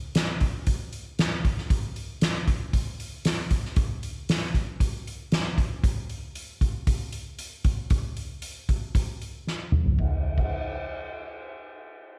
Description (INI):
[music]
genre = rock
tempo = 116 BPM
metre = 4/4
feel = straight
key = none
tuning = none
[part]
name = soft-mallet drum kit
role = drums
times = 0.2-10.5 s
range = hi-hat, kick drum, ride cymbal, snare drum, toms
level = -28 LUFS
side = equal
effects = none
[sound]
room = light reverb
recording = none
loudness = -28 LUFS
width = mono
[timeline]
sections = 0.0-10.0 A section; 10.0-12.2 B section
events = drum fill 9.5-10.0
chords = none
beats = 0.15 0.67 1.18 | 1.70 2.21 2.73 3.25 | 3.76 4.28 4.80 5.31 | 5.83 6.35 6.87 7.38 | 7.90 8.42 8.94 9.46 | 9.98 10.50